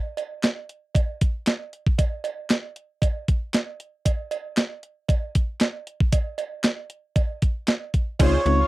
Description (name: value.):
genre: early-eighties boogie funk.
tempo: 116 BPM.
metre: 4/4.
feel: straight.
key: Db major.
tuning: A4 = 440 Hz.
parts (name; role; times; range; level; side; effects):
crisp 8-bit digital drum machine; drums; 0.2-8.6 s; crash cymbal, handclaps, hi-hat, kick drum, snare drum; -21 LUFS; equal; overdrive.
cowbell; percussion; 0.2-8.3 s; none; -32 LUFS; right 7 dB; none.
expressive synth lead; melody; 8.2-8.7 s; Db5; -22 LUFS; right 2 dB; chorus, slapback echo.
analog synth brass; second line; 8.2-8.7 s; F4 to F5; -29 LUFS; right 2 dB; chorus.
mellow FM electric piano; accompaniment; 8.2-8.6 s; Ab3 to F4; -24 LUFS; left 5 dB; chorus.
slap-like FM bass; bass; 8.2-8.6 s; Db2; -21 LUFS; equal; none.
room: little or no reverb.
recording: dry, close 1970s-style studio recording.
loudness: -22 LUFS.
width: side -18 dB against mid.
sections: 0.0-8.2 A section.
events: none.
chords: none.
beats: 0.44 0.95 1.47 | 1.99 2.51 3.02 3.54 | 4.06 4.58 5.09 5.61 | 6.13 6.64 7.16 7.68 | 8.20.